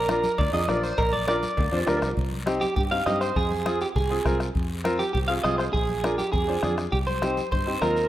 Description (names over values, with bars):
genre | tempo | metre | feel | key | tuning
latin, cumbia | 202 BPM | 4/4 | straight | C minor | A4 = 438 Hz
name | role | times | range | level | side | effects
electric guitar at the edge of break-up | melody | 0.0-8.1 s | G4 to F5 | -26 LUFS | right 2 dB | spring reverb, slapback echo
fingered electric bass | bass | 0.0-8.1 s | Bb1 to G2 | -30 LUFS | equal | none
bright upright piano | accompaniment | 0.1-8.0 s | C4 to C5 | -28 LUFS | left 1 dB | none
bombo | percussion | 0.1-8.0 s | none | -29 LUFS | left 1 dB | none
congas | percussion | 0.1-8.0 s | none | -37 LUFS | left 2 dB | none
guiro | percussion | 0.1-8.1 s | none | -41 LUFS | left 2 dB | none
cowbell and timbales | percussion | 0.4-2.1 s | none | -36 LUFS | right 2 dB | none
room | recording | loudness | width
light reverb | rough home demo mix | -22 LUFS | side -13 dB against mid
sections
0.0-2.2 A section; 2.2-8.1 B section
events
drum fill 1.3-2.2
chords
0.0 Bb; 2.2 Cm; 3.4 Fm; 5.7 Bb; 6.9 Cm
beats
0.09 0.39 0.68 | 0.98 1.28 1.57 1.87 | 2.17 2.47 2.77 3.06 | 3.36 3.66 3.95 4.25 | 4.55 4.85 5.14 5.44 | 5.74 6.04 6.33 6.63 | 6.93 7.22 7.52 7.82